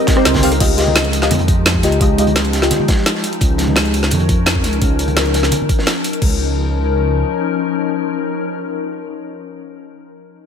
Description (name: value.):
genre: liquid drum and bass.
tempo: 171 BPM.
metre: 4/4.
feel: straight.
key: Db lydian.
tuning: A4 = 440 Hz.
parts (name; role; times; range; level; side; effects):
deep mellow chord stab; accompaniment; 0.0-3.4 s; Ab3 to F5; -18 LUFS; left 1 dB; chorus, ping-pong delay.
glassy FM pad; sustained chords; 0.0-9.8 s; F3 to Bb4; -20 LUFS; left 4 dB; ensemble chorus, built-in reverb.
bongos and congas; percussion; 0.0-5.7 s; none; -22 LUFS; right 4 dB; none.
crunchy breakbeat drum kit; drums; 0.1-6.1 s; hi-hat, snare drum; -24 LUFS; right 1 dB; high-pass filter on hats, high-pass filter on snare, high-pass filter on room.
drum and bass drum kit; drums; 0.1-6.3 s; crash cymbal, hi-hat, rim click, snare drum; -19 LUFS; equal; overdrive.
electronic kick drum; drums; 0.1-6.3 s; none; -16 LUFS; equal; overdrive.
dark detuned saw bass; bass; 0.3-7.2 s; Db2 to F2; -18 LUFS; equal; none.
room: light reverb, small room ambience.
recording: none.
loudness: -13 LUFS.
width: side -7 dB against mid.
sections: 0.6-6.2 A section; 6.2-9.0 B section.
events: none.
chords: 0.0 Cm7; 0.6 Fm9/Db; 3.4 Db69.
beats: 0.25 | 0.60 0.96 1.31 1.66 | 2.01 2.36 2.71 3.06 | 3.41 3.76 4.11 4.46 | 4.82 5.17 5.52 5.87 | 6.22 6.57 6.92 7.27 | 7.62 7.97 8.32 8.68.